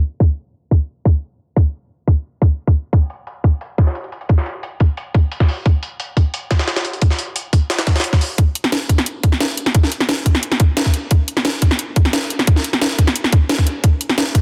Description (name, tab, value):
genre	drum and bass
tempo	176 BPM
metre	4/4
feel	straight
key	none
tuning	none
part	electronic kick drum	drums	0.2-14.4 s	none	-15 LUFS	equal	overdrive
part	jungle sampler-style drum kit	drums	2.9-8.3 s	hi-hat, snare drum	-25 LUFS	equal	high-pass filter on hats, high-pass filter on snare, high-pass filter on room
part	drum and bass drum kit	drums	8.4-14.4 s	hi-hat, snare drum	-20 LUFS	equal	overdrive
room	light reverb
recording	dense, heavily limited modern master, low-pass filter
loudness	-17 LUFS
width	mono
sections	0.0-8.4 A section; 8.4-14.4 B section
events	filter sweep 0.0-8.4; build-up 8.4-14.4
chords	none